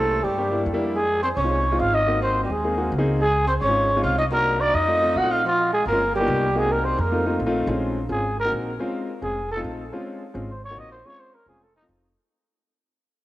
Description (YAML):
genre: jazz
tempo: 214 BPM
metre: 4/4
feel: straight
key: unclear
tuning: A4 = 442 Hz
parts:
  - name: growling trumpet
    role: melody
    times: 0.0-11.8 s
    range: Eb4 to Gb5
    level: -22 LUFS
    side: equal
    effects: none
  - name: breathy tenor saxophone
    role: second line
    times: 0.0-7.4 s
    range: F3 to Gb4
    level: -29 LUFS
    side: right 2 dB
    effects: cassette tape
  - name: warm baby grand piano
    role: accompaniment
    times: 0.0-12.1 s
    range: G3 to Ab4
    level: -27 LUFS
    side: left 1 dB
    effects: cassette tape
  - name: upright bass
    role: bass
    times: 0.0-12.1 s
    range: F1 to G2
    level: -27 LUFS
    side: equal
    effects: none
room: wet lush hall reverb, RT60 2.8 s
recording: home recording on cassette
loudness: -20 LUFS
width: side -16 dB against mid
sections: 0.0-7.7 A section; 7.7-12.2 B section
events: fade-out 7.7-12.2; trumpet solo 7.7-12.2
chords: 0.0 C7; 0.9 Fm7; 2.1 Ab7; 3.2 Dbmaj9; 4.3 Cm7b5; 4.9 F7; 5.4 Bbm7; 6.0 G7alt; 6.6 Cm7b5; 7.1 F7; 7.7 Bbm7; 8.2 Ab7; 8.8 Dbmaj7; 9.4 F7; 9.9 Dbmaj7/Ab; 10.5 Ab7; 11.0 Bbm9; 11.6 F7